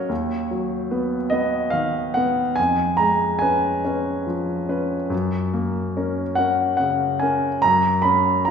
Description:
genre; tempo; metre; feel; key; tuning
classical, romantic nocturne for solo piano; 48 BPM (dotted quarters); 12/8; rubato; F# major; A4 = 440 Hz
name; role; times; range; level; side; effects
warm concert grand piano; solo; 0.0-8.5 s; D#2 to B5; -19 LUFS; equal; none
room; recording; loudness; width
wet recital hall reverb, RT60 1.5 s; recorded in a church or concert hall; -19 LUFS; side -6 dB against mid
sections
0.0-8.5 A section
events
none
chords
0.1 B/D#; 2.6 C#7/E#; 5.1 F#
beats
| 0.10 1.32 2.58 3.85 | 5.12 6.38 7.63

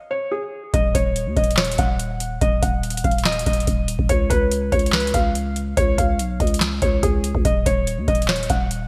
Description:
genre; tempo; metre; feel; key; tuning
hip hop, trap; 143 BPM; 4/4; half-time; Eb minor; A4 = 437 Hz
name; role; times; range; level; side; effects
felt-muted upright piano; melody; 0.1-8.9 s; Ab4 to Gb5; -26 LUFS; equal; none
growling 808-style bass; bass; 0.7-8.9 s; Eb1 to Eb2; -26 LUFS; equal; none
booming analog drum machine; drums; 0.7-8.8 s; handclaps, hi-hat, kick drum, snare drum; -23 LUFS; equal; gated reverb
room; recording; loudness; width
light reverb, digital ambience; bright 1980s-style digital production; -20 LUFS; mono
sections
0.7-8.9 A section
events
break 0.0-0.7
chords
0.0 Db5; 0.7 Ebm; 4.1 Db; 7.5 Ebm7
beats
0.32 | 0.74 1.16 1.58 2.00 | 2.42 2.83 3.25 3.67 | 4.09 4.51 4.93 5.35 | 5.77 6.19 6.61 7.03 | 7.45 7.87 8.29 8.71

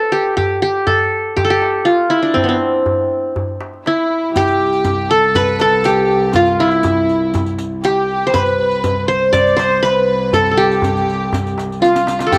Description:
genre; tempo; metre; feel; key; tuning
Arabic maqam ensemble; 120 BPM; 4/4; straight; C maqam ajam; A4 = 439 Hz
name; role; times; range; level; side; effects
qanun; melody; 0.0-12.4 s; B3 to D5; -17 LUFS; equal; none
darbuka; percussion; 0.4-12.4 s; none; -26 LUFS; equal; none
warm studio violin section; second line; 3.9-12.4 s; E4 to D5; -22 LUFS; equal; none
dark cello; drone; 4.3-12.4 s; C2; -26 LUFS; equal; none
riq; percussion; 4.4-12.4 s; none; -30 LUFS; equal; none
room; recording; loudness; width
light reverb, studio ambience; none; -15 LUFS; mono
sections
0.0-4.4 A section; 4.4-12.4 B section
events
drum fill 11.8-12.3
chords
none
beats
| 0.37 0.87 1.37 1.86 | 2.36 2.86 3.36 3.86 | 4.36 4.85 5.35 5.85 | 6.35 6.84 7.34 7.84 | 8.34 8.84 9.33 9.83 | 10.33 10.83 11.33 11.82 | 12.32

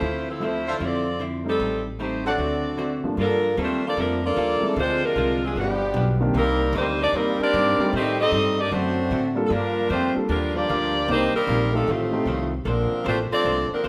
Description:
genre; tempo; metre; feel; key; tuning
jazz, big band swing; 152 BPM; 4/4; swing 64% on 8ths; D minor, G minor from 3.2 s; A4 = 440 Hz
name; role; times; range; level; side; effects
warm saxophone section; melody; 0.0-13.9 s; F3 to Eb5; -26 LUFS; equal; none
archtop guitar, miked and amplified; accompaniment; 0.0-13.9 s; F2 to C5; -33 LUFS; equal; none
upright bass; bass; 0.0-13.9 s; G1 to A2; -31 LUFS; equal; none
warm concert grand piano; accompaniment; 0.4-12.3 s; G2 to A4; -30 LUFS; equal; none
clear trumpet section; stabs; 0.7-2.3 s; D4 to F#5; -31 LUFS; equal; none
warm trombone section; second line; 2.3-13.9 s; A2 to Eb4; -30 LUFS; equal; none
room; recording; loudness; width
wet large studio reverb, RT60 1.1 s; none; -23 LUFS; mono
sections
0.0-3.2 A section; 3.2-13.9 B section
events
none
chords
0.0 Dm9; 1.6 Am7b5; 2.4 D7; 3.2 Gm9; 4.8 Dm7b5; 5.6 G7; 6.3 Cm7; 7.9 Am7b5; 8.7 D7; 9.5 Gm7; 11.1 Cm7; 11.9 F7; 12.7 Bbmaj9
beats
| 0.01 0.41 0.81 1.20 | 1.60 1.99 2.39 2.79 | 3.18 3.58 3.97 4.37 | 4.76 5.16 5.55 5.95 | 6.34 6.74 7.13 7.53 | 7.92 8.32 8.71 9.11 | 9.51 9.90 10.29 10.69 | 11.08 11.48 11.87 12.27 | 12.66 13.05 13.45 13.84

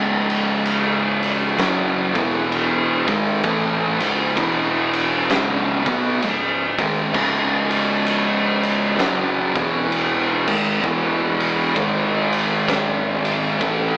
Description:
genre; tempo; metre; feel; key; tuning
stoner and doom metal; 65 BPM; 4/4; swing 61% on 8ths; C# minor; A4 = 440 Hz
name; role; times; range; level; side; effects
thick fuzz guitar; riff; 0.0-14.0 s; C#2 to B3; -24 LUFS; left 1 dB; distortion
thick fuzz guitar; riff; 0.0-14.0 s; C#2 to B3; -21 LUFS; right 1 dB; distortion
growling fingered electric bass; bass; 0.0-14.0 s; C#1 to B1; -32 LUFS; equal; overdrive
oversized low-tuned drum kit; drums; 0.3-13.9 s; crash cymbal, kick drum, ride cymbal, snare drum; -21 LUFS; equal; none
room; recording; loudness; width
light reverb; band playing live in one room, AM radio sound; -17 LUFS; side -24 dB against mid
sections
0.0-14.0 A section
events
none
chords
0.0 C#5; 2.0 E5; 3.0 C#m; 4.4 E5; 5.3 C#5; 9.5 E5; 10.4 G#5; 10.8 E5; 11.8 G#5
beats
0.66 1.59 2.51 | 3.44 4.37 5.29 6.22 | 7.14 8.07 8.99 9.91 | 10.84 11.76 12.69 13.61

